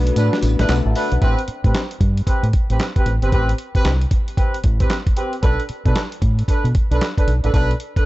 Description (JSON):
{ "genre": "R&B, new jack swing", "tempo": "114 BPM", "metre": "4/4", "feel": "swing 63% on 16ths", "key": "A dorian", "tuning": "A4 = 437 Hz", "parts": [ { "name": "FM electric piano with tremolo", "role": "accompaniment", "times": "0.0-1.4 s", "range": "A3 to A5", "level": "-24 LUFS", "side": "left 6 dB", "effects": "none" }, { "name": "clear studio string section", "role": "sustained chords", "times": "0.0-1.2 s", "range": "D3 to B3", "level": "-33 LUFS", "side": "equal", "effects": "none" }, { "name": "fingered electric bass", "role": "bass", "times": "0.0-8.0 s", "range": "G1 to B2", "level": "-18 LUFS", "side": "equal", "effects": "none" }, { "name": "dusty soul sampler-style drum kit", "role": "drums", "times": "0.1-8.1 s", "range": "handclaps, hi-hat, kick drum, snare drum, tambourine", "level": "-19 LUFS", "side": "equal", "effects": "none" }, { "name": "mellow horn section", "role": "stabs", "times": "0.2-8.1 s", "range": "C4 to B4", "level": "-24 LUFS", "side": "right 2 dB", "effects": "none" } ], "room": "little or no reverb", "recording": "dark, warm production, nothing above 8.0 kHz", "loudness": "-16 LUFS", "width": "side -18 dB against mid", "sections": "0.0-1.2 A section; 1.2-8.1 B section", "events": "break 0.0-1.2; FM electric piano fill 0.4-1.2", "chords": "0.0 Bm7; 1.2 Am9; 5.4 Bm7" }